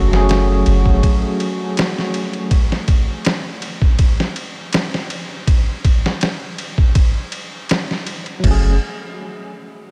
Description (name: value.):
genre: trip hop.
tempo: 81 BPM.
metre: 4/4.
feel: straight.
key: F# minor.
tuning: A4 = 440 Hz.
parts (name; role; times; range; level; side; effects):
santur; melody; 0.0-2.5 s; F#4 to A4; -32 LUFS; equal; dub echo.
bell-like tine electric piano; accompaniment; 0.0-2.5, 8.4-8.8 s; F#3 to G#4; -25 LUFS; equal; tremolo, vintage 12-bit sampler grit, tape echo.
soft 808-style bass; bass; 0.0-1.0, 8.4-8.8 s; F#1; -17 LUFS; equal; none.
trip hop sampler-style drum kit; drums; 0.1-8.6 s; crash cymbal, kick drum, ride cymbal, snare drum; -20 LUFS; equal; small room ambience.
room: light reverb.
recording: none.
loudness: -17 LUFS.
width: mono.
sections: 0.0-8.4 A section; 8.4-9.9 B section.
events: none.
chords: 0.0 F#madd9; 2.5 N.C.; 8.4 F#madd9.